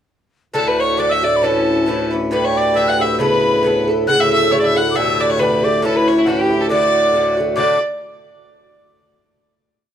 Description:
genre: celtic folk, Celtic polka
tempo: 137 BPM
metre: 2/4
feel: swing 56% on 8ths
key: D major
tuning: A4 = 441 Hz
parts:
  - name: bright fiddle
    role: melody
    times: 0.5-7.8 s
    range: E4 to F#5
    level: -17 LUFS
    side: right 1 dB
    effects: none
  - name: breathy bright tin whistle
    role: second line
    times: 0.5-7.8 s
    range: E5 to F#6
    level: -22 LUFS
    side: left 5 dB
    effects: none
  - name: Irish bouzouki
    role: accompaniment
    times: 0.5-7.8 s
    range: G2 to A4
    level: -18 LUFS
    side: equal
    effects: none
  - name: pedal harmonium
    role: drone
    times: 0.5-7.6 s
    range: D2 to A2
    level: -23 LUFS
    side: left 1 dB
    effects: none
room: small room ambience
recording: dry, close 1970s-style studio recording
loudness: -14 LUFS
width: side -9 dB against mid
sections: 0.5-7.6 A section; 7.6-8.4 final chord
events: none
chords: 0.5 D; 1.4 A; 2.3 G; 3.2 Aadd9; 4.1 A; 5.0 Gadd9; 5.8 A; 6.7 D

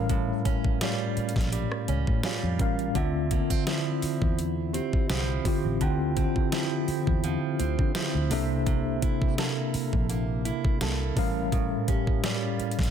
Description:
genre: contemporary R&B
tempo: 84 BPM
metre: 4/4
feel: swing 54% on 16ths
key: D minor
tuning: A4 = 440 Hz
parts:
  - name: mellow tine electric piano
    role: accompaniment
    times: 0.0-12.9 s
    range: A2 to G5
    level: -29 LUFS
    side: left 1 dB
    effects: medium stereo tremolo
  - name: fingerpicked steel-string acoustic guitar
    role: arpeggios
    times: 0.0-12.9 s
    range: A2 to A4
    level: -34 LUFS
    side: right 8 dB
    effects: tape echo
  - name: vintage muted fingered electric bass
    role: bass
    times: 0.0-12.9 s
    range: A1 to D3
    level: -30 LUFS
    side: equal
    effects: none
  - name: large celesta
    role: texture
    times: 0.0-0.1, 4.7-7.3, 11.9-12.9 s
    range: G4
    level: -41 LUFS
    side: right 4 dB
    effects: tape echo
  - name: smooth R&B drum kit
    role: drums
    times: 0.1-12.9 s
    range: hi-hat, kick drum, rim click, snare drum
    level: -28 LUFS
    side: equal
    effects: none
room: little or no reverb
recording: dense, heavily limited modern master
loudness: -24 LUFS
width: side -8 dB against mid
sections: 0.0-12.9 A section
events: none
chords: 0.0 A7b9b13; 3.0 Dm9; 8.3 C13; 11.2 A7b9b13

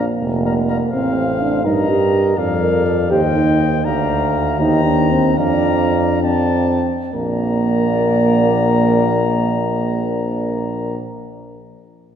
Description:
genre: classical, brass quintet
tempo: 64-84 BPM (dotted quarters)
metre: 6/8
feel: rubato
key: Bb major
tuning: A4 = 440 Hz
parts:
  - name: warm trumpet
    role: melody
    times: 0.0-11.0 s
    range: F5 to Bb5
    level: -25 LUFS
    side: left 7 dB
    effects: none
  - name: mellow flugelhorn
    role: second line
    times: 0.0-10.9 s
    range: D5 to G5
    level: -26 LUFS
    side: right 2 dB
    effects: none
  - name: mellow euphonium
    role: accompaniment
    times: 0.0-10.9 s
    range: Bb3 to Bb4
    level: -19 LUFS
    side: right 2 dB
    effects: none
  - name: warm French horn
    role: accompaniment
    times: 0.0-11.0 s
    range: A4 to D5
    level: -26 LUFS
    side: left 4 dB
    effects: none
  - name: clear tuba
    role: bass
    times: 0.0-11.0 s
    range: F1 to G2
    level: -19 LUFS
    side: equal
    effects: none
room: wet church reverb, RT60 2.9 s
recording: recorded in a church or concert hall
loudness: -14 LUFS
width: side -8 dB against mid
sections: 0.0-7.1 A section; 7.1-10.8 B section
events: slowing down 3.1-7.1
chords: 0.0 Bb; 0.9 F/A; 1.7 Eb/G; 2.4 Dm/F; 3.1 Cm/Eb; 3.9 Bb/D; 4.6 Cm7/Eb; 5.4 Bb/F; 6.2 F69; 7.1 Bb

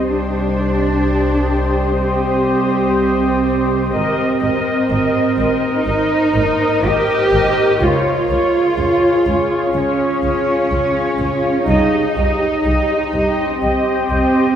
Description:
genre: cinematic, suspense film score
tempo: 62 BPM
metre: 4/4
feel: straight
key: C minor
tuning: A4 = 439 Hz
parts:
  - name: dark symphonic viola section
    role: accompaniment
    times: 0.0-14.6 s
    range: F4 to Eb5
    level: -19 LUFS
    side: equal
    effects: none
  - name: deep dark ambient pad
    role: sustained chords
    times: 0.0-14.6 s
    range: G4 to Eb6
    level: -21 LUFS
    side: left 2 dB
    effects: chorus, built-in reverb
  - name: dark studio cello section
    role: bass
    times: 0.0-14.6 s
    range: C4 to G4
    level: -18 LUFS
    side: right 2 dB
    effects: none
  - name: rich symphonic double bass section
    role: bass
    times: 0.0-14.2 s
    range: Ab1 to Db2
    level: -22 LUFS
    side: equal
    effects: none
room: wet scoring stage reverb, RT60 2.1 s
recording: heard from further back in the room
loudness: -14 LUFS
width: side -9 dB against mid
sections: 0.0-14.6 A section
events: none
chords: 0.0 Cm; 3.9 Abadd9; 7.8 Db; 11.7 Cm

